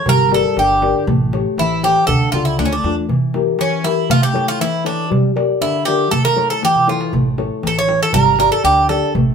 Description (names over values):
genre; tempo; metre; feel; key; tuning
greek folk, Greek bouzouki band; 119 BPM; 2/4; straight; unclear; A4 = 440 Hz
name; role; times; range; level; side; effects
Greek bouzouki; melody; 0.0-9.1 s; C#4 to C#5; -16 LUFS; right 2 dB; none
nylon-string guitar; accompaniment; 0.0-9.3 s; D3 to D5; -19 LUFS; left 5 dB; none
upright bass; bass; 0.1-3.1, 7.1-9.3 s; G1 to E2; -23 LUFS; equal; none
darbuka; percussion; 0.1-9.3 s; none; -20 LUFS; right 2 dB; none
room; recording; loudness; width
wet studio reverb, RT60 0.5 s; band playing live in one room; -13 LUFS; side -6 dB against mid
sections
0.0-3.1 A section; 3.1-9.3 A section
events
drum fill 6.7-7.1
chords
0.1 Gm; 1.1 A7; 2.1 Dm; 3.1 Edim; 4.1 A; 5.1 Gm; 6.1 A; 8.1 Gm